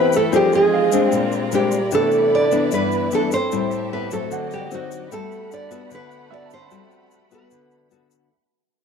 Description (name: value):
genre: bossa nova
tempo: 150 BPM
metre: 4/4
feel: straight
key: G major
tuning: A4 = 440 Hz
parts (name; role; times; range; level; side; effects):
- nylon-string guitar; melody; 0.0-7.9 s; F#4 to D5; -20 LUFS; right 2 dB; none
- warm trombone; second line; 0.0-7.9 s; F#3 to D4; -29 LUFS; right 12 dB; none
- clear grand piano; accompaniment; 0.0-1.3, 4.3-8.3 s; D5 to B5; -30 LUFS; right 8 dB; none
- nylon-string guitar; accompaniment; 0.0-8.3 s; G2 to B4; -22 LUFS; left 9 dB; none
- rich studio violin section; sustained chords; 0.0-8.3 s; A3 to B5; -31 LUFS; right 1 dB; none
- egg shaker; percussion; 0.1-8.3 s; none; -37 LUFS; left 12 dB; none
room: light reverb, small room ambience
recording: 1960s-style stereo with parts hard left and right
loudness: -16 LUFS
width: side -6 dB against mid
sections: 0.0-8.3 A section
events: fade-out 0.0-8.3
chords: 0.3 Fm7; 1.1 Bb9; 1.9 Cmaj9; 3.5 Am7; 4.3 D7b9; 5.1 Gmaj9